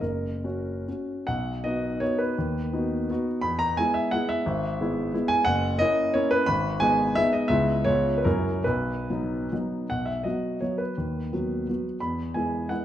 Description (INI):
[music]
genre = classical, romantic triple-time dance for piano with dotted rhythms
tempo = 132-191 BPM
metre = 3/4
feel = rubato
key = B major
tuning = A4 = 440 Hz
[part]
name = warm grand piano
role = solo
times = 0.0-12.8 s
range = F#1 to B5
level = -24 LUFS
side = equal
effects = none
[sound]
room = moderate recital hall reverb, RT60 1.7 s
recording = dark, warm production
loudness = -24 LUFS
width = side -11 dB against mid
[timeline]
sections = 0.0-1.3 A section; 1.3-9.9 B section; 9.9-12.8 B section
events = none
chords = 0.0 F#; 1.3 B; 2.4 B/D#; 3.4 E; 4.5 E/G#; 5.5 F#7; 6.5 G#m; 7.5 C#m7; 7.9 C#7; 8.3 F#7; 8.7 B; 11.0 B/D#; 12.0 E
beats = | 0.02 0.44 0.87 | 1.28 1.65 2.02 | 2.37 2.73 3.09 | 3.43 3.77 4.12 | 4.46 4.80 5.13 | 5.45 5.80 6.15 | 6.48 6.82 7.17 | 7.50 7.86 8.26 | 8.66 9.10 9.52 | 9.90 10.25 10.62 | 10.98 11.34 11.69 | 12.02 12.36 12.71